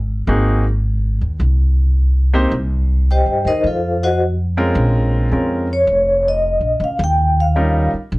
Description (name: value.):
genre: jazz.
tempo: 107 BPM.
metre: 4/4.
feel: swing 68% on 8ths.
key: Ab major.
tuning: A4 = 440 Hz.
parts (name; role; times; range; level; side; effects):
upright bass; bass; 0.0-8.2 s; F1 to G2; -16 LUFS; equal; none.
clear concert grand piano; accompaniment; 0.3-7.9 s; G3 to C5; -18 LUFS; equal; none.
vibraphone with medium mallets; melody; 3.1-7.9 s; Eb4 to G5; -16 LUFS; equal; none.
room: light reverb.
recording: cassette tape, lossy compression artefacts.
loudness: -14 LUFS.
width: side -21 dB against mid.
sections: 0.0-8.2 A section.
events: none.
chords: 0.3 Ab7; 2.5 Cm; 3.6 F; 7.0 Eb7.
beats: | 0.29 0.85 1.41 1.96 | 2.52 3.08 3.64 4.20 | 4.76 5.32 5.88 6.44 | 7.00 7.56 8.12.